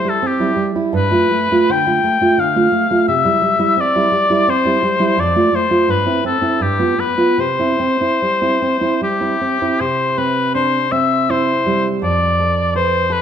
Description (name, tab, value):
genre	romantic duo for oboe and classical guitar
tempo	73-89 BPM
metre	3/4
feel	rubato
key	C major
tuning	A4 = 440 Hz
part	clear oboe	melody	0.0-13.2 s	G4 to G5	-16 LUFS	left 3 dB	none
part	nylon-string guitar	accompaniment	0.0-13.2 s	F2 to B4	-17 LUFS	right 3 dB	none
room	moderate recital hall reverb, RT60 1.6 s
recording	minimal, uncompressed stereo recording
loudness	-13 LUFS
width	side -8 dB against mid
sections	0.0-9.8 A section; 9.8-13.2 B section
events	none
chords	0.0 C; 0.9 G9; 3.1 C; 5.2 Dm/F; 5.9 C/G; 6.6 G7; 7.4 C; 12.0 F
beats	0.24 | 0.94 1.70 2.39 | 3.09 3.79 4.49 | 5.19 5.90 6.63 | 7.41 8.22 9.03 | 9.81 10.56 11.30 | 12.03 12.75